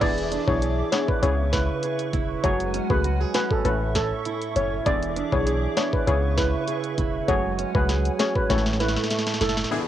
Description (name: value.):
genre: dancehall.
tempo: 99 BPM.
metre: 4/4.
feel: straight.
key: F# minor.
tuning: A4 = 440 Hz.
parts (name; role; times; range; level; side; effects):
steel pan; melody; 0.0-9.5 s; A4 to D5; -27 LUFS; equal; cassette tape, tape echo.
glassy wavetable pluck; accompaniment; 0.0-9.9 s; A3 to A4; -30 LUFS; left 8 dB; chorus, cassette tape.
hollow soft pad; sustained chords; 0.0-9.9 s; G#3 to D6; -32 LUFS; left 2 dB; ensemble chorus, sidechain pumping, cassette tape.
fingerpicked acoustic archtop guitar; arpeggios; 0.0-9.9 s; A2 to A4; -28 LUFS; right 8 dB; cassette tape, tape echo.
punchy sub bass; bass; 0.0-9.6 s; E1 to C#2; -26 LUFS; equal; none.
island pop drum kit; drums; 0.0-9.8 s; crash cymbal, hi-hat, kick drum, snare drum; -27 LUFS; equal; none.
downlifter; sound effects; 9.7-9.9 s; none; -31 LUFS; equal; none.
room: little or no reverb.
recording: home recording on cassette.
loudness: -21 LUFS.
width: side -11 dB against mid.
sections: 0.0-9.7 A section.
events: drum fill 8.5-9.7.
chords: 0.0 E7; 1.2 C#m7; 2.4 F#madd9; 3.6 A; 4.9 E7; 6.1 C#m7; 7.3 F#madd9; 8.5 A.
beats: | 0.01 0.62 1.23 1.83 | 2.44 3.04 3.65 4.25 | 4.86 5.47 6.07 6.68 | 7.29 7.89 8.50 9.10 | 9.71.